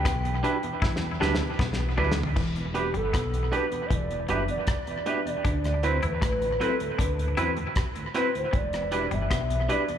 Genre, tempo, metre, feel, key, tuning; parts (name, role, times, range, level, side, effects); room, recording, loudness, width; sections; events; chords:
lovers rock reggae; 78 BPM; 4/4; straight; E minor; A4 = 439 Hz
hollow clarinet-like synth lead; melody; 0.0-10.0 s; G4 to G5; -31 LUFS; equal; chorus, tape echo, slapback echo
deep dub fingered electric bass; bass; 0.0-9.7 s; E1 to E2; -29 LUFS; equal
twangy electric guitar; riff; 0.1-9.5 s; E3 to E4; -35 LUFS; left 5 dB; dub echo, slapback echo
damped 70s drum kit; drums; 0.1-10.0 s; crash cymbal, hi-hat, kick drum, rim click, snare drum, toms; -30 LUFS; equal; dub echo
tonewheel organ; accompaniment; 0.2-10.0 s; D2 to E4; -37 LUFS; right 2 dB; chorus vibrato, stopped rotary speaker, dub echo, slapback echo
tine electric piano; accompaniment; 0.4-9.8 s; C4 to B4; -35 LUFS; left 1 dB; medium stereo tremolo, dub echo, slapback echo
twangy electric guitar; stabs; 0.4-9.8 s; F#3 to B4; -31 LUFS; right 5 dB; dub echo, slapback echo
light reverb; live gig heard through the venue's PA, club reverb; -24 LUFS; side -9 dB against mid
0.0-2.4 A section; 2.4-10.0 B section
drum fill 0.8-2.4; soft synth lead solo 2.4-10.0
0.0 Em7; 5.5 D13; 8.5 Em7